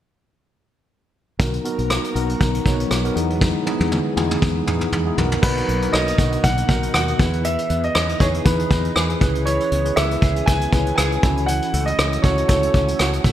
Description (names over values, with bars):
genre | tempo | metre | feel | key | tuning
1980s-style pop | 119 BPM | 4/4 | swing 55% on 16ths | B major | A4 = 440 Hz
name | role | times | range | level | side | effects
tine electric piano | accompaniment | 1.4-13.3 s | B2 to C#5 | -24 LUFS | left 1 dB | medium stereo tremolo
string machine, full ensemble | sustained chords | 1.4-5.4 s | E3 to A#4 | -30 LUFS | equal | ensemble chorus
mellow fretless electric bass | bass | 1.4-13.3 s | A#1 to E2 | -23 LUFS | equal | none
vintage brush drum kit | drums | 1.4-13.3 s | crash cymbal, hi-hat, kick drum, rim click, toms | -20 LUFS | equal | gated reverb
warm concert grand piano | melody | 5.4-13.2 s | B4 to G#5 | -23 LUFS | right 1 dB | none
direct-recorded clean electric guitar | riff | 5.4-13.3 s | E3 to G#4 | -29 LUFS | right 5 dB | ensemble chorus
room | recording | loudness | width
moderate lush hall reverb, RT60 2.5 s | bright 1980s-style digital production | -17 LUFS | side -11 dB against mid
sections
1.4-5.4 A section; 5.4-13.3 B section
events
drum fill 3.4-5.4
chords
1.4 Bmaj7; 3.2 Emaj7; 5.2 Bmaj7; 7.2 Emaj7; 9.2 C#m7; 11.2 A6/C#